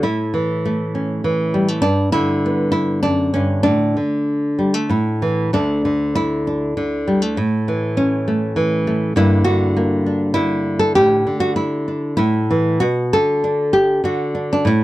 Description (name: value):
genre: folk, solo fingerstyle acoustic guitar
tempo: 99 BPM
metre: 3/4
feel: rubato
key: unclear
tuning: A4 = 437 Hz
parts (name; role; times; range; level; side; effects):
- nylon-string guitar; solo; 0.0-14.8 s; D2 to A4; -16 LUFS; equal; none
room: little or no reverb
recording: dry, close 1970s-style studio recording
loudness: -16 LUFS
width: side -16 dB against mid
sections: 0.0-5.5 A section; 5.5-14.8 A section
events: none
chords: 0.0 A; 1.8 G; 3.7 Asus4; 4.9 A5; 5.5 D5; 7.4 A; 9.2 Gm; 11.0 Asus4; 12.2 A5; 12.8 Bm